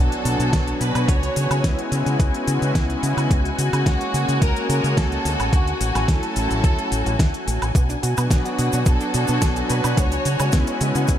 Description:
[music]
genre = nu-disco, nu disco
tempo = 108 BPM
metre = 4/4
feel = straight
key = B dorian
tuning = A4 = 441 Hz
[part]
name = rich chamber violin section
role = melody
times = 0.0-10.8 s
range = F#4 to C#5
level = -28 LUFS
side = right 1 dB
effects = ping-pong delay
[part]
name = warm analog pad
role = accompaniment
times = 0.0-11.2 s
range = F#3 to F#4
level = -26 LUFS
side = equal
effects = chorus, analog delay
[part]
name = rich symphonic string section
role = sustained chords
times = 0.0-11.2 s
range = F#4 to G#5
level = -28 LUFS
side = left 2 dB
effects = vintage 12-bit sampler grit, sidechain pumping
[part]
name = deep dub fingered electric bass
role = bass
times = 0.0-11.2 s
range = A1 to C#3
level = -23 LUFS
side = equal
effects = none
[part]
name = impact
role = sound effects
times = 0.2-1.1 s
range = none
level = -41 LUFS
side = equal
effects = none
[part]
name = pop drum kit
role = drums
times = 0.1-11.2 s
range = hi-hat, shaker, snare drum, woodblock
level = -28 LUFS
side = equal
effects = none
[part]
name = electronic kick drum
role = drums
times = 0.5-11.2 s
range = none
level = -19 LUFS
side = equal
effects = overdrive
[part]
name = analog pluck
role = arpeggios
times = 7.8-11.2 s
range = G#3 to F#4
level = -31 LUFS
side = right 3 dB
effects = chorus, sidechain pumping, ping-pong delay
[part]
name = cabasa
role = percussion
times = 7.8-11.2 s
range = none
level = -35 LUFS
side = right 8 dB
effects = none
[sound]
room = light reverb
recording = none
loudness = -18 LUFS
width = side -10 dB against mid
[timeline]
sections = 0.0-11.2 A section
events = impact 0.0-1.1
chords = 0.0 Bm; 1.1 C#m7; 3.3 F#add9/C#; 5.3 Dmaj7; 7.8 Bm; 10.0 C#m7

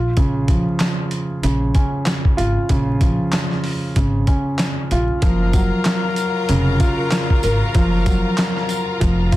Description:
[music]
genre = hip hop, boom-bap hip-hop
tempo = 95 BPM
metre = 4/4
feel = swing 58% on 16ths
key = unclear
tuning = A4 = 440 Hz
[part]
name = dark baby grand piano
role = accompaniment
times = 0.0-9.4 s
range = Db3 to Bb4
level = -20 LUFS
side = right 1 dB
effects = none
[part]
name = upright bass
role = bass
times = 0.0-9.3 s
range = F1 to Bb1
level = -20 LUFS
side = equal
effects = none
[part]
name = boom bap sampler-style drum kit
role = drums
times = 0.2-9.4 s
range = handclaps, hi-hat, kick drum, snare drum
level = -19 LUFS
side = equal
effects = none
[part]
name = bright studio string section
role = sustained chords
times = 5.2-9.4 s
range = F4 to Bb5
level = -28 LUFS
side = left 2 dB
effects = plate reverb
[part]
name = bright saxophone section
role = stabs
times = 5.2-9.4 s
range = Gb3 to Bb4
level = -24 LUFS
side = left 5 dB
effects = tape echo, plate reverb
[part]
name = tambourine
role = percussion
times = 5.5-9.4 s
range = none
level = -36 LUFS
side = right 5 dB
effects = none
[sound]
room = light reverb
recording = dense, heavily limited modern master, vinyl crackle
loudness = -16 LUFS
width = side -16 dB against mid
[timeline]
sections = 0.0-5.2 A section; 5.2-9.4 B section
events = none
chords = 0.0 Bbm; 5.2 Gbmaj7

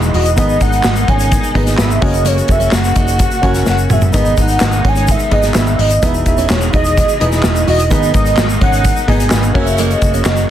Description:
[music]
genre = piano-driven pop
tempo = 128 BPM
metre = 4/4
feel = straight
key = G# minor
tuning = A4 = 438 Hz
[part]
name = warm velvety synth lead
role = melody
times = 0.0-10.5 s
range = C#5 to G#5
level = -18 LUFS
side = right 1 dB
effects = chorus
[part]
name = felt-muted upright piano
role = accompaniment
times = 0.0-10.5 s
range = G#2 to F#5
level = -20 LUFS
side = left 2 dB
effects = none
[part]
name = rich studio string section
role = sustained chords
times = 0.0-10.5 s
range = B2 to G#4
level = -24 LUFS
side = left 1 dB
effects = none
[part]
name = vintage muted fingered electric bass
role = bass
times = 0.0-10.4 s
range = E1 to G#1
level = -16 LUFS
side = equal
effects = none
[part]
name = tube shaker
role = percussion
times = 0.0-10.5 s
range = none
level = -28 LUFS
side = left 7 dB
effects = none
[part]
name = fingerpicked steel-string acoustic guitar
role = riff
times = 0.1-10.2 s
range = A#3 to G#4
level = -23 LUFS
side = right 8 dB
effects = none
[part]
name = modern studio drum kit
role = drums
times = 0.1-10.5 s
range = crash cymbal, handclaps, hi-hat, kick drum, snare drum, toms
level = -15 LUFS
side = equal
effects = none
[sound]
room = studio reverb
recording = dense, heavily limited modern master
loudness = -10 LUFS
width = side -11 dB against mid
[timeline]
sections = 0.0-10.5 A section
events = drum fill 3.7-4.1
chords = 0.4 G#m; 2.0 F#; 4.1 G#m; 6.0 Emaj7; 7.9 G#m; 9.6 F#

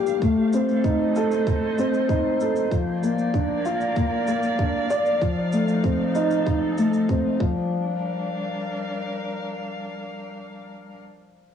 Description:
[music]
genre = piano and strings electronica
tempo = 96 BPM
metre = 4/4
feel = straight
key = G minor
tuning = A4 = 440 Hz
[part]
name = dark string quartet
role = sustained chords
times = 0.0-11.0 s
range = F3 to F5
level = -30 LUFS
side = equal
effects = sidechain pumping, cassette tape
[part]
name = dark baby grand piano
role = riff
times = 0.0-11.5 s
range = F3 to D5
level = -22 LUFS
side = left 1 dB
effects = cassette tape, tape echo
[part]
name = shaker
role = drums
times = 0.1-7.2 s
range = none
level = -49 LUFS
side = right 2 dB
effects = cassette tape
[part]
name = electronic kick drum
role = drums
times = 0.2-7.5 s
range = none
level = -25 LUFS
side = equal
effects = cassette tape
[sound]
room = moderate spring reverb, RT60 1.7 s, small room ambience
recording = home recording on cassette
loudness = -21 LUFS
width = side -8 dB against mid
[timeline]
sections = 0.0-7.7 A section; 7.7-10.2 B section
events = none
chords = 0.2 Adim; 2.7 Bb; 5.2 F7; 7.4 G5; 7.7 Gm7

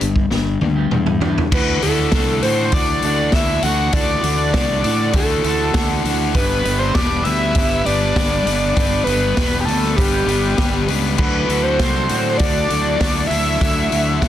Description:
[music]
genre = indie rock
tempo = 99 BPM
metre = 4/4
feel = straight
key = D mixolydian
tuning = A4 = 441 Hz
[part]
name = distorted electric guitar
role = riff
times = 0.0-14.3 s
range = D3 to B4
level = -22 LUFS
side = left 9 dB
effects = distortion
[part]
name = electric guitar at the edge of break-up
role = riff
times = 0.0-14.3 s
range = E3 to G4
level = -25 LUFS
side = right 6 dB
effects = lush chorus, slapback echo
[part]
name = fuzz fingered electric bass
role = bass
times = 0.0-14.3 s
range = E1 to A2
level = -22 LUFS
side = right 1 dB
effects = overdrive
[part]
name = vintage drum kit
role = drums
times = 0.0-14.3 s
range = crash cymbal, hi-hat, kick drum, snare drum, toms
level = -20 LUFS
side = equal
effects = none
[part]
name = overdriven synth lead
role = melody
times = 1.5-14.3 s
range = G4 to F#5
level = -20 LUFS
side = equal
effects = distortion, slapback echo
[part]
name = growling trumpet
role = second line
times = 1.5-14.3 s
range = G3 to F#4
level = -30 LUFS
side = right 6 dB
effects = none
[sound]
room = light reverb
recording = dense, heavily limited modern master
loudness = -15 LUFS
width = side -11 dB against mid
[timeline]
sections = 0.0-1.5 A section; 1.5-14.3 B section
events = drum fill 0.3-1.5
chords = 0.0 G; 1.5 Dadd9; 6.4 G; 11.2 Dadd9

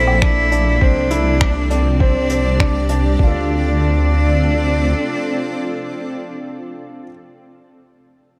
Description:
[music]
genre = piano and strings electronica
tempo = 101 BPM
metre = 4/4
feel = straight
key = D minor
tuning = A4 = 440 Hz
[part]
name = bright cello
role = melody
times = 0.0-6.3 s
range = C4 to E4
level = -24 LUFS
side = equal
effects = tape echo
[part]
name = granular cloud pad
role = sustained chords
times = 0.0-6.3 s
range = F3 to D5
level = -27 LUFS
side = equal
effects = built-in reverb, sidechain pumping
[part]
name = warm baby grand piano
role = riff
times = 0.0-7.1 s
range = C4 to D5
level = -25 LUFS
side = equal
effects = tape echo
[part]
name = dark detuned saw bass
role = bass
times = 0.0-4.9 s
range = Bb1 to D2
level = -20 LUFS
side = equal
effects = sidechain pumping
[part]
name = soft brush drum kit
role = drums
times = 0.1-3.0 s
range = finger snaps, hi-hat, woodblock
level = -27 LUFS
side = equal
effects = none
[part]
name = electronic kick drum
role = drums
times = 0.2-3.3 s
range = none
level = -17 LUFS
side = equal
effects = overdrive
[sound]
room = light reverb, studio reverb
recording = none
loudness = -17 LUFS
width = mono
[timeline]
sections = 0.0-3.2 A section; 3.2-5.6 B section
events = drop 0.0-3.2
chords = 0.0 Bbmaj7; 0.8 Csus2; 3.2 Dm7

